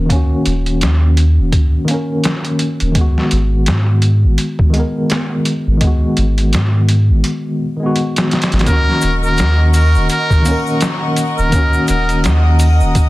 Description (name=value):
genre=trip hop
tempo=84 BPM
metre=4/4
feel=swing 58% on 16ths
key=Eb minor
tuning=A4 = 440 Hz
part: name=tine electric piano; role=accompaniment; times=0.0-13.1 s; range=Eb3 to Bb4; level=-18 LUFS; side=left 1 dB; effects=overdrive, tremolo, vintage 12-bit sampler grit, tape echo
part: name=soft dub sub bass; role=bass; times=0.0-12.9 s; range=Eb1 to Ab2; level=-12 LUFS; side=equal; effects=tube saturation
part: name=trip hop sampler-style drum kit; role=drums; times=0.1-13.1 s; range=hi-hat, kick drum, snare drum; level=-16 LUFS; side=equal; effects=none
part: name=trumpet with metal mute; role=melody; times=8.7-12.2 s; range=Bb4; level=-19 LUFS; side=equal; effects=tape echo
part: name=rich chamber string section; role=sustained chords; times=8.7-13.1 s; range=Bb4 to Eb6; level=-22 LUFS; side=left 2 dB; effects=none
part: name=egg shaker and triangle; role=percussion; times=8.7-13.1 s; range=none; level=-31 LUFS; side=left 2 dB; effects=none
room=small room ambience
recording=dense, heavily limited modern master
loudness=-12 LUFS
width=side -18 dB against mid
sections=0.0-13.1 A section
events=break 7.2-8.7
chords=0.0 Ebm7; 3.0 Abm7; 8.7 Ebm7